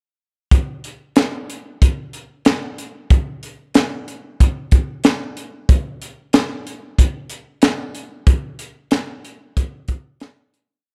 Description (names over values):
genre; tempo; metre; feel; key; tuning
funk; 93 BPM; 4/4; straight; none; none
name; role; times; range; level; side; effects
crisp fusion drum kit; drums; 0.5-10.7 s; hi-hat, kick drum, snare drum; -17 LUFS; equal; none
room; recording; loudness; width
little or no reverb; none; -19 LUFS; mono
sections
0.5-10.9 breakdown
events
fade-out 8.3-10.9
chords
none